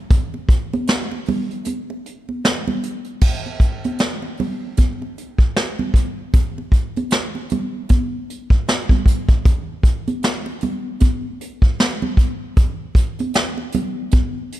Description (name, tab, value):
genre	R&B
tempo	77 BPM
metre	4/4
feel	swing 59% on 16ths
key	none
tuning	none
part	vintage brush drum kit	drums	0.1-14.6 s	crash cymbal, hi-hat, kick drum, snare drum	-16 LUFS	equal	none
part	congas	percussion	0.1-14.3 s	none	-25 LUFS	right 2 dB	none
room	little or no reverb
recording	none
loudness	-17 LUFS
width	side -14 dB against mid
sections	0.0-3.2 A section; 3.2-14.6 B section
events	break 1.7-3.2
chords	none